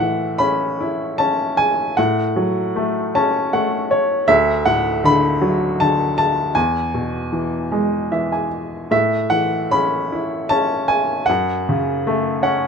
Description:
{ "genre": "classical, lyrical solo piano", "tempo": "77 BPM", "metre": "3/4", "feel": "rubato", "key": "A major", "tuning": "A4 = 440 Hz", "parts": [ { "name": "clear baby grand piano", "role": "solo", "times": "0.0-12.7 s", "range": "D2 to B5", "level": "-16 LUFS", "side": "equal", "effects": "none" } ], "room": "light reverb", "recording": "close, detailed microphones", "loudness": "-16 LUFS", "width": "side -6 dB against mid", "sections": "0.0-12.7 A section", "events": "grand piano fill 2.8-4.3, 7.7-8.9, 12.1-12.7", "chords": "0.0 A; 2.0 F#m/A; 4.3 D; 6.6 E; 8.9 A; 11.3 F#m" }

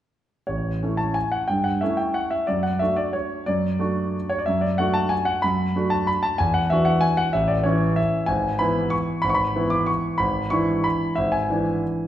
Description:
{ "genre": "classical, piano waltz", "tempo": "167-199 BPM", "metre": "3/4", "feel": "rubato", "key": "A major", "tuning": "A4 = 443 Hz", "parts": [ { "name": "clear concert grand piano", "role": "solo", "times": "0.5-12.1 s", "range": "G#1 to D6", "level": "-20 LUFS", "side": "equal", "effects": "none" } ], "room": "wet recital hall reverb, RT60 1.6 s", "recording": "recorded in a church or concert hall, nothing above 10.4 kHz", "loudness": "-20 LUFS", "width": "side -11 dB against mid", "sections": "0.5-12.1 A section", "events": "none", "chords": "0.5 A; 1.5 A7/G; 2.5 D/F#; 6.4 Esus2; 7.3 A; 8.3 E/G#" }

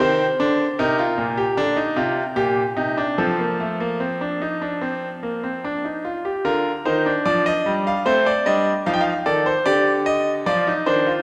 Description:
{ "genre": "classical, baroque-style 3-part fugue for grand piano", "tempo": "75 BPM", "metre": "4/4", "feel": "straight", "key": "Bb major", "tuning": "A4 = 438 Hz", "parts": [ { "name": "bright concert grand piano", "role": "solo", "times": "0.0-11.2 s", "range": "Bb2 to G5", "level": "-21 LUFS", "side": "equal", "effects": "none" } ], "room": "wet concert hall reverb, RT60 2.2 s", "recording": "recorded in a church or concert hall", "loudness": "-21 LUFS", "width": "mono", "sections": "0.0-6.5 A section; 6.5-11.2 B section", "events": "none", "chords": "0.0 Cm7; 3.2 F; 6.5 Bb/D; 8.1 F7; 9.7 Ebmaj13/D" }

